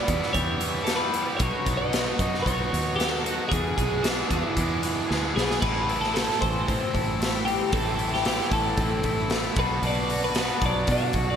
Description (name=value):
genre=indie rock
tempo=114 BPM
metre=4/4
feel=straight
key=unclear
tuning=A4 = 439 Hz
part: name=twelve-string electric guitar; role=melody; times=0.0-11.4 s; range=E4 to F#5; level=-28 LUFS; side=left 1 dB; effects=wide subtle chorus
part: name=biting overdriven guitar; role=riff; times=0.0-11.4 s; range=E2 to G#4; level=-31 LUFS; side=left 4 dB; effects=none
part: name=raw garage guitar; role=riff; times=0.0-11.4 s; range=E2 to G4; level=-31 LUFS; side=right 6 dB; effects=overdrive, lush chorus
part: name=fingered electric bass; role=bass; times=0.1-11.4 s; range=A1 to B2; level=-30 LUFS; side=equal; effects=none
part: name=raw garage drum kit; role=drums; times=0.1-11.3 s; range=crash cymbal, hi-hat, kick drum, snare drum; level=-28 LUFS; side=equal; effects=gated reverb
room=moderate lush hall reverb, RT60 1.7 s, small room ambience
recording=bright 1980s-style digital production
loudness=-22 LUFS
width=side -8 dB against mid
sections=0.0-5.6 A section; 5.6-11.4 B section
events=drum fill 5.1-5.6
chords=0.0 Em; 1.4 B; 3.5 E7; 5.6 Am; 9.6 Bm